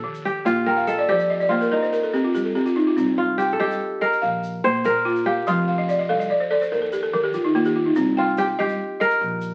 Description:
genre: west african traditional, West African string and xylophone music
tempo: 96 BPM (dotted quarters)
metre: 12/8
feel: straight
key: C dorian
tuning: A4 = 441 Hz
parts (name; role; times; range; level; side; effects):
- kora; melody; 0.0-9.5 s; Eb4 to C5; -25 LUFS; equal; none
- balafon; arpeggios; 0.0-9.2 s; Eb3 to G5; -23 LUFS; equal; none
- egg shaker; percussion; 0.1-9.5 s; none; -55 LUFS; equal; none
- upright bass; bass; 0.5-9.5 s; F1 to Eb3; -36 LUFS; equal; none
room: moderate studio reverb, RT60 0.8 s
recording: very old 78 rpm record, vinyl crackle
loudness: -21 LUFS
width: mono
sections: 0.0-3.0 A section; 3.0-9.5 B section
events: balafon fill 0.7-3.0, 5.7-8.0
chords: 0.5 Bb; 1.7 Cm; 4.2 Bb5; 5.5 F; 6.7 Eb5; 8.0 Cm

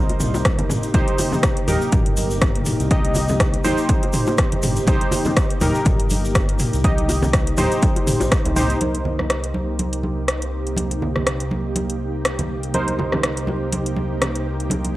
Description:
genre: afro house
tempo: 122 BPM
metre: 4/4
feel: swing 56% on 16ths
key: C minor pentatonic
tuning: A4 = 441 Hz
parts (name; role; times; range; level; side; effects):
- ethereal airy pad; sustained chords; 0.0-15.0 s; C3 to G4; -28 LUFS; equal; ensemble chorus, built-in reverb, sidechain pumping
- warm analog keys; stabs; 0.0-15.0 s; Eb4 to Eb5; -25 LUFS; equal; chorus, sidechain pumping, low-pass filter, analog delay
- smooth synth bass; bass; 0.0-15.0 s; G1 to Eb2; -25 LUFS; equal; tube saturation, sidechain pumping
- house drum kit; drums; 0.1-14.9 s; hi-hat, rim click, toms; -24 LUFS; equal; overdrive
- bongos; percussion; 0.1-8.7, 12.7-14.8 s; none; -28 LUFS; left 2 dB; none
- tube shaker; percussion; 0.2-8.8 s; none; -33 LUFS; left 2 dB; none
- electronic kick drum; drums; 0.5-8.4 s; none; -20 LUFS; equal; overdrive
- congas; percussion; 0.6-14.9 s; none; -27 LUFS; right 2 dB; none
room: little or no reverb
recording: dry, gritty hardware recording, cassette tape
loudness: -17 LUFS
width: side -16 dB against mid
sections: 0.0-8.8 A section; 8.8-15.0 B section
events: none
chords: 0.0 Cm7

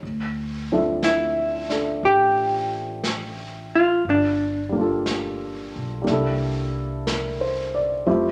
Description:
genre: jazz ballad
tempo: 60 BPM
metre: 4/4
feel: swing 69% on 8ths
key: unclear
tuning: A4 = 440 Hz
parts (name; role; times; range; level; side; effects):
- warm baby grand piano; accompaniment; 0.0-8.3 s; F3 to E5; -27 LUFS; equal; none
- upright bass; bass; 0.0-8.3 s; G1 to F2; -33 LUFS; equal; none
- jazz brush drum kit; drums; 0.0-8.3 s; brushed snare drum, hi-hat, snare drum; -34 LUFS; equal; none
- vintage hollow-body jazz guitar; melody; 1.0-7.0 s; D4 to G4; -23 LUFS; equal; none
room: moderate large studio reverb, RT60 1.1 s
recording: none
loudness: -23 LUFS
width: mono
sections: 0.0-8.3 A section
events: none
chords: 0.0 Dm9; 4.0 Gm9; 6.1 C13

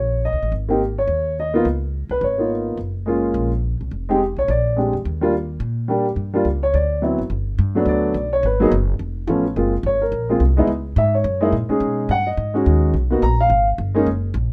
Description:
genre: jazz piano trio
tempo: 213 BPM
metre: 4/4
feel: swing 60% on 8ths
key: unclear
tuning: A4 = 439 Hz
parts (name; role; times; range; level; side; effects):
- warm upright piano; melody; 0.0-14.1 s; F3 to A#5; -21 LUFS; equal; none
- upright bass; bass; 0.0-14.5 s; F1 to B2; -24 LUFS; equal; none
room: light reverb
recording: none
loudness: -20 LUFS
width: mono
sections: 0.0-7.3 A section; 7.3-14.5 B section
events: none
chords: 0.0 Eb7(no3); 0.5 Ab5; 1.7 Db13; 2.8 Gbmaj7; 3.9 N.C.; 4.5 Bb13; 5.0 Ebmaj7; 6.7 D13; 7.3 Gmaj9; 8.4 Abm7; 9.0 Dbaug7; 9.6 Gbmaj9#11; 10.7 Db5; 11.2 Gb69; 11.8 B6; 12.9 Bmaj7(no3); 13.5 N.C.

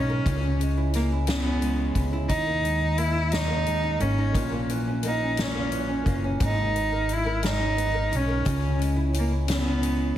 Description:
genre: six-eight pop ballad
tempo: 59 BPM (dotted quarters)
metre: 6/8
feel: straight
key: unclear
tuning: A4 = 441 Hz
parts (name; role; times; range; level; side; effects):
- rich cello; melody; 0.0-10.2 s; A#3 to E4; -27 LUFS; right 1 dB; none
- flamenco guitar; accompaniment; 0.0-10.2 s; G#2 to A#4; -29 LUFS; equal; none
- upright bass; bass; 0.0-10.1 s; F#1 to D#2; -27 LUFS; equal; none
- soft-mallet drum kit; drums; 0.3-10.0 s; hi-hat, kick drum, snare drum; -31 LUFS; left 1 dB; none
room: light reverb, studio reverb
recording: heavily compressed radio sound, multiband compression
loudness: -22 LUFS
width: side -12 dB against mid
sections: 0.0-10.2 A section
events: none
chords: 0.3 C#m; 2.3 D#sus4; 4.3 A#dim; 6.4 G#madd9; 8.5 C#m

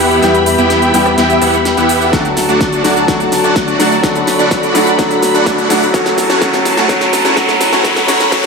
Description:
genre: EDM, festival progressive house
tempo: 126 BPM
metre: 4/4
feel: straight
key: D major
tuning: A4 = 440 Hz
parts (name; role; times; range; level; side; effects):
- bright baby grand piano; accompaniment; 0.0-8.5 s; F#3 to G4; -15 LUFS; left 2 dB; sidechain pumping, ping-pong delay
- warm studio string section; sustained chords; 0.0-8.5 s; E4 to B5; -18 LUFS; left 1 dB; vintage 12-bit sampler grit, sidechain pumping
- supersaw chords; riff; 0.0-8.5 s; A3 to G5; -14 LUFS; right 1 dB; wide subtle chorus, sidechain pumping, low-pass filter, ping-pong delay
- wide detuned saw bass; bass; 0.0-8.5 s; A1 to E2; -25 LUFS; equal; chorus, sidechain pumping
- big-room dance drum kit; drums; 0.1-8.5 s; hi-hat, rim click, shaker, snare drum; -19 LUFS; right 1 dB; high-pass filter on snare, high-pass filter on hats, high-pass filter on perc
- electronic kick drum; drums; 2.1-8.4 s; none; -20 LUFS; equal; none
- riser; sound effects; 4.0-8.5 s; none; -19 LUFS; equal; none
room: wet plate reverb, RT60 1.3 s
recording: dreamy mix soaked in reverb, high-pass filter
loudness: -9 LUFS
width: side -4 dB against mid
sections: 0.0-8.5 A section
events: build-up 0.0-8.5; drum fill 0.0-8.5; filter sweep 0.0-8.5; riser 4.0-8.5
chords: 0.0 Em; 2.1 D; 5.9 A

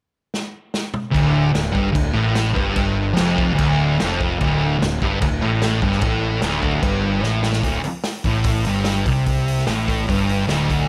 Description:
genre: garage rock duo or trio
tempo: 148 BPM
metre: 4/4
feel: straight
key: unclear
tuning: A4 = 441 Hz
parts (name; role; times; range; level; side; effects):
- vintage drum kit; drums; 0.3-10.8 s; crash cymbal, hi-hat, kick drum, snare drum, toms; -26 LUFS; equal; none
- thick fuzz guitar; riff; 1.1-10.9 s; D2 to C3; -21 LUFS; equal; distortion
- fuzz fingered electric bass; bass; 1.2-10.9 s; D1 to C2; -28 LUFS; equal; overdrive
room: studio reverb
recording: none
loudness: -20 LUFS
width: mono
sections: 0.0-1.2 A section; 1.2-7.6 B section; 7.6-10.9 C section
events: drum fill 0.3-1.2, 7.2-7.6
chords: 0.0 N.C.; 1.2 D5

